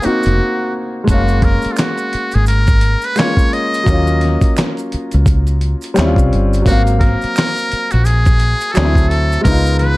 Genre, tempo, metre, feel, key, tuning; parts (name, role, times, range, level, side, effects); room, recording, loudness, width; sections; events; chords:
R&B, neo-soul; 86 BPM; 4/4; swing 60% on 16ths; F# major; A4 = 440 Hz
trumpet with metal mute; melody; 0.0-10.0 s; E#4 to D#5; -20 LUFS; equal
clear grand piano; accompaniment; 0.0-10.0 s; F#3 to E#5; -19 LUFS; left 1 dB; plate reverb
dusty soul sampler-style drum kit; drums; 0.0-10.0 s; handclaps, hi-hat, kick drum, snare drum; -15 LUFS; equal
maracas and finger snaps; percussion; 0.0-9.8 s; -31 LUFS; right 6 dB
woody fretless electric bass; bass; 0.1-9.9 s; E#1 to D#2; -14 LUFS; equal; wide subtle chorus
light reverb; dark, warm production; -12 LUFS; side -19 dB against mid
0.0-1.1 A section; 1.1-10.0 B section
break 0.4-1.1
0.0 G#7 (rootless); 1.1 F#maj9; 3.9 D#m9; 6.0 D#13; 6.7 G#13; 8.8 D9; 9.4 C#7